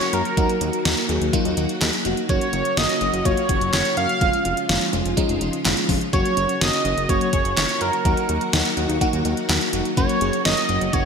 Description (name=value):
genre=synth-pop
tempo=125 BPM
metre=4/4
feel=straight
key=F# major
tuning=A4 = 440 Hz
part: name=octave-doubled lead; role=melody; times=0.0-11.1 s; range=A#4 to E#5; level=-23 LUFS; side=right 2 dB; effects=chorus, digital delay
part: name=FM electric piano with soft pad layer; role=accompaniment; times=0.0-11.1 s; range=E#3 to A#5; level=-25 LUFS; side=left 1 dB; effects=chorus, phaser
part: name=string machine, violins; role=sustained chords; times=0.0-11.1 s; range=C#3 to F#4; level=-28 LUFS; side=left 1 dB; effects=ensemble chorus
part: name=pop drum kit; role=drums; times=0.0-11.0 s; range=handclaps, hi-hat, kick drum, snare drum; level=-22 LUFS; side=equal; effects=overdrive, gated reverb
part: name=fat analog bass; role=bass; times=0.1-11.0 s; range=E#1 to F#2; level=-26 LUFS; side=equal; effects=none
room=wet lush hall reverb, RT60 1.6 s, digital ambience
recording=bright 1980s-style digital production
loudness=-18 LUFS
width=side -6 dB against mid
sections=0.0-11.1 A section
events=FM electric piano fill 8.5-10.0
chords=0.4 D#m; 2.3 F#; 4.2 C#/E#; 6.1 F#; 8.1 D#m; 10.0 F#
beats=| 0.37 0.85 1.33 1.81 | 2.29 2.77 3.25 3.73 | 4.21 4.69 5.17 5.65 | 6.13 6.61 7.09 7.57 | 8.05 8.53 9.01 9.49 | 9.97 10.45 10.93